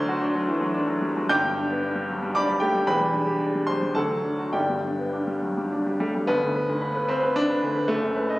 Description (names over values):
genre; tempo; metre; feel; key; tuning
classical, virtuoso piano study; 100-116 BPM; 3/4; rubato; G major; A4 = 439 Hz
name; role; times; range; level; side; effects
clear baby grand piano; solo; 0.0-8.4 s; E1 to G6; -22 LUFS; equal; none
room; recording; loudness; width
moderate recital hall reverb, RT60 1.6 s; recorded on a phone in the room, club reverb; -22 LUFS; side -18 dB against mid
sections
0.0-6.3 A section; 6.3-8.4 A section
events
none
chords
0.0 D7; 1.3 G; 2.9 Em7; 3.9 D; 4.5 G; 7.9 B7/F#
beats
0.22 0.74 | 1.30 1.83 2.34 | 2.86 3.40 3.95 | 4.53 5.13 5.72 | 6.29 6.83 7.37 | 7.89